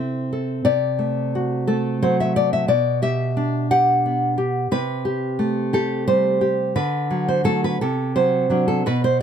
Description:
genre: romantic piece for solo classical guitar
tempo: 58 BPM (dotted quarters)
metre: 6/8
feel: rubato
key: unclear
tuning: A4 = 438 Hz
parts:
  - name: nylon-string guitar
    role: solo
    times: 0.0-9.2 s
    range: B2 to F#5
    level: -18 LUFS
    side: equal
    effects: none
room: light reverb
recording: close, detailed microphones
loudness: -18 LUFS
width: side -8 dB against mid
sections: 0.0-9.2 A section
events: none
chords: 0.0 Am/C; 0.7 D7/C; 2.7 G/B; 4.7 Am7/C; 6.8 D; 7.8 D7/C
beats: | 0.66 1.68 | 2.70 3.71 | 4.71 5.73 | 6.76 7.81 | 8.86

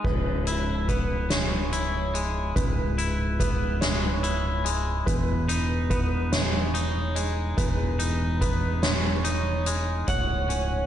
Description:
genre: post-rock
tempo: 48 BPM (dotted quarters)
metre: 6/8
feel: straight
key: C# minor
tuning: A4 = 440 Hz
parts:
  - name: felt-muted upright piano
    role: arpeggios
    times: 0.0-10.9 s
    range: B4 to C#5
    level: -34 LUFS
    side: right 3 dB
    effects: slapback echo
  - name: twangy electric guitar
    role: arpeggios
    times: 0.0-10.9 s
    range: C#2 to E4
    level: -30 LUFS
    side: left 2 dB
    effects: spring reverb, slapback echo
  - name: growling fingered electric bass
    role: bass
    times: 0.0-10.9 s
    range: C#1 to E1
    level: -28 LUFS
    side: equal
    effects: overdrive
  - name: soft-mallet drum kit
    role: drums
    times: 0.0-10.7 s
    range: crash cymbal, hi-hat, kick drum, snare drum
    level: -28 LUFS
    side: equal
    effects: none
  - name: electric guitar at the edge of break-up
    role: melody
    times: 10.1-10.9 s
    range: F#5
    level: -29 LUFS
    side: right 4 dB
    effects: slapback echo
room: moderate lush hall reverb, RT60 2.3 s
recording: big arena sound, nothing above 10.3 kHz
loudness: -23 LUFS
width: side -10 dB against mid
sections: 0.0-10.1 A section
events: none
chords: 0.0 C#m7; 5.1 Emaj7; 10.1 A/C#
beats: | 0.04 1.30 | 2.56 3.82 | 5.07 6.32 | 7.58 8.83 | 10.08

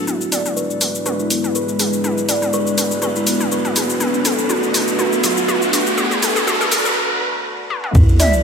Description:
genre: afro house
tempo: 122 BPM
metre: 4/4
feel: swing 55% on 16ths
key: B dorian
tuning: A4 = 437 Hz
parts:
  - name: dark analog pad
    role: sustained chords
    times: 0.0-8.4 s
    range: G#3 to B4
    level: -23 LUFS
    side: left 1 dB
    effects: chorus, sidechain pumping
  - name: buzzing kalimba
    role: arpeggios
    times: 0.1-8.3 s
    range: F#3 to D5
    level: -21 LUFS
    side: right 1 dB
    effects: sidechain pumping, low-pass filter, ping-pong delay
  - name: deep house drum kit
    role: drums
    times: 0.1-8.4 s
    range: cabasa, hi-hat, toms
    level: -20 LUFS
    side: left 2 dB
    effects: overdrive, high-pass filter on perc, high-pass filter on toms, high-pass filter on hats
  - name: riser and sub drop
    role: sound effects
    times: 1.9-8.4 s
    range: none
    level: -21 LUFS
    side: equal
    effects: none
  - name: round analog bass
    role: bass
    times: 8.0 s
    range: E2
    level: -11 LUFS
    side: equal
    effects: sidechain pumping
  - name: electronic kick drum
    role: drums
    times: 8.0-8.1 s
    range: none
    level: -14 LUFS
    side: equal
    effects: none
  - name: breathy hollow jazz flute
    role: melody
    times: 8.2-8.3 s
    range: E5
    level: -23 LUFS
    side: equal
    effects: ping-pong delay
room: moderate lush hall reverb, RT60 2.1 s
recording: bright 1980s-style digital production, high-pass filter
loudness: -15 LUFS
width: side -6 dB against mid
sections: 0.1-8.0 A section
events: build-up 0.1-8.0; drum fill 0.1-7.0, 7.7; filter sweep on kalimba 0.1-8.0; riser 1.9-7.0; break 7.0-8.0; impact 8.0-8.4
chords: 0.1 E7; 4.0 Bm7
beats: | 0.08 0.57 1.06 1.56 | 2.05 2.54 3.03 3.52 | 4.01 4.51 5.00 5.49 | 5.98 6.47 6.97 7.46 | 7.95

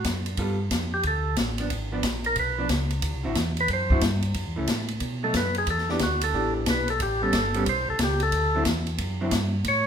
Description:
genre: soul jazz organ trio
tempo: 181 BPM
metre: 4/4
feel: swing 64% on 8ths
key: unclear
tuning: A4 = 440 Hz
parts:
  - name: percussive tonewheel organ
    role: melody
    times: 0.0-9.9 s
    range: D4 to C#5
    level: -26 LUFS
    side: equal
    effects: slow rotary speaker
  - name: mellow tonewheel organ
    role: bass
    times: 0.0-9.9 s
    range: G1 to B2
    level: -28 LUFS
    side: equal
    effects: chorus vibrato, slow rotary speaker
  - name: swinging big-band drum kit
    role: drums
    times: 0.0-9.8 s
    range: hi-hat, kick drum, ride cymbal, snare drum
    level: -28 LUFS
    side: equal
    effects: none
  - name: vintage hollow-body jazz guitar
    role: accompaniment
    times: 0.4-9.3 s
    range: D3 to A4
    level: -30 LUFS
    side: equal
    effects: none
room: moderate large studio reverb, RT60 1.2 s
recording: minimal, uncompressed stereo recording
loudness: -23 LUFS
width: side -8 dB against mid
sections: 0.0-9.9 A section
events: tonewheel organ solo 0.0-9.9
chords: 0.4 G9; 1.7 G#dim7; 3.0 D9; 4.4 F#m7; 5.0 B7; 5.7 Em7; 7.0 A9; 8.3 D9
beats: 0.05 | 0.38 0.71 1.04 1.38 | 1.71 2.04 2.37 2.70 | 3.03 3.36 3.69 4.03 | 4.36 4.69 5.02 5.35 | 5.68 6.01 6.34 6.67 | 7.01 7.34 7.67 8.00 | 8.33 8.66 8.99 9.32 | 9.65

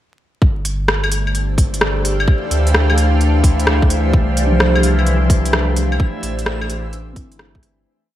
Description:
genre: future garage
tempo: 129 BPM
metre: 4/4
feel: swing 66% on 16ths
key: unclear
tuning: A4 = 440 Hz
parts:
  - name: ethereal airy pad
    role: sustained chords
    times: 1.1-7.9 s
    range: A3 to F5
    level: -21 LUFS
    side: equal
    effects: ensemble chorus, built-in reverb, phaser, sidechain pumping
  - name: warm sub bass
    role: bass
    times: 0.4-7.8 s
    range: G1 to D2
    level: -17 LUFS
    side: equal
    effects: sidechain pumping
  - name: electronic kick drum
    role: drums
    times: 0.4-7.6 s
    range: none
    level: -14 LUFS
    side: equal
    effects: none
  - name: backwards swelling texture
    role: texture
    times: 0.4-7.9 s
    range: E3 to E6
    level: -28 LUFS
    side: left 2 dB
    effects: built-in reverb
  - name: garage drum kit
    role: drums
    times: 0.7-7.8 s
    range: claves, hi-hat, rim click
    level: -20 LUFS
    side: equal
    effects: none
  - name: muted felt-like synth keys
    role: accompaniment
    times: 4.5-7.9 s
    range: F3 to E4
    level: -22 LUFS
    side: left 3 dB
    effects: chorus, sidechain pumping, dub echo
room: light reverb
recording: vinyl crackle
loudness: -13 LUFS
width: side -13 dB against mid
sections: 0.4-7.9 groove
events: fade-out 5.4-7.9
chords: 0.4 G5; 2.3 Dm9; 4.1 Csus4; 6.0 Am7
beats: | 0.42 0.88 1.35 1.81 | 2.28 2.74 3.21 3.67 | 4.14 4.60 5.07 5.53 | 6.00 6.46 6.93 7.39

